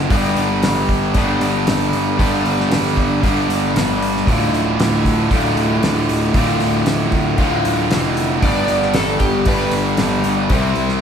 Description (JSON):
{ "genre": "classic rock", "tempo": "116 BPM", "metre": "4/4", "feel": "straight", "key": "unclear", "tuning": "A4 = 440 Hz", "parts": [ { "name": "raw garage guitar", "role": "riff", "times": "0.0-11.0 s", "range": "D2 to C5", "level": "-19 LUFS", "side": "left 4 dB", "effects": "overdrive" }, { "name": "tight distorted guitar", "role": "riff", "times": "0.0-11.0 s", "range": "D2 to C4", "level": "-20 LUFS", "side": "right 7 dB", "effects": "distortion" }, { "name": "fuzz picked electric bass", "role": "bass", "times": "0.0-11.0 s", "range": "D1 to C2", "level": "-22 LUFS", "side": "equal", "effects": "overdrive" }, { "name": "damped 70s drum kit", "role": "drums", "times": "0.1-11.0 s", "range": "hi-hat, kick drum, snare drum", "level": "-21 LUFS", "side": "equal", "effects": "none" }, { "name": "overdriven slide guitar", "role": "second line", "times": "8.4-9.7 s", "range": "G4 to D5", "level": "-22 LUFS", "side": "right 1 dB", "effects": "none" } ], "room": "wet large studio reverb, RT60 1.3 s", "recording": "band playing live in one room", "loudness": "-14 LUFS", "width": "side -7 dB against mid", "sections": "0.0-11.0 A section", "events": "none", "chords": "0.1 G; 4.3 Dm; 8.4 G; 10.5 C" }